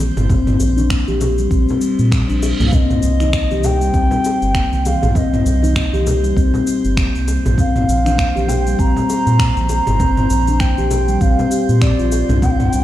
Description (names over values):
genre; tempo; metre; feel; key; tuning
organic downtempo; 99 BPM; 4/4; swing 58% on 16ths; unclear; A4 = 440 Hz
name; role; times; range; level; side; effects
steel tongue drum; arpeggios; 0.0-12.6 s; G3 to G4; -19 LUFS; left 3 dB; tape echo
round analog bass; bass; 0.0-12.8 s; G1 to Bb2; -17 LUFS; equal; none
organic electronic drum kit; drums; 0.0-12.8 s; finger snaps, shaker, toms; -24 LUFS; equal; none
bongos and congas; percussion; 0.0-12.6 s; none; -26 LUFS; left 2 dB; none
drifting glass-harmonics texture; texture; 0.0-12.8 s; C5; -32 LUFS; right 7 dB; chorus, built-in reverb
electronic kick drum; drums; 0.3-12.6 s; none; -18 LUFS; equal; none
reverse cymbal; sound effects; 1.9-2.7 s; none; -29 LUFS; right 3 dB; none
bansuri; melody; 2.7-12.8 s; D5 to Bb5; -22 LUFS; equal; tape echo
room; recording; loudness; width
light reverb; played on a big sound system in a bare room, stone room reverb; -13 LUFS; side -13 dB against mid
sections
0.0-12.8 A section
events
reverse cymbal 1.9-2.7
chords
0.0 Bb5; 2.7 Cm; 7.6 Bb5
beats
| 0.30 0.91 1.51 2.12 | 2.73 3.33 3.94 4.55 | 5.15 5.76 6.36 6.97 | 7.58 8.18 8.79 9.39 | 10.00 10.61 11.21 11.82 | 12.42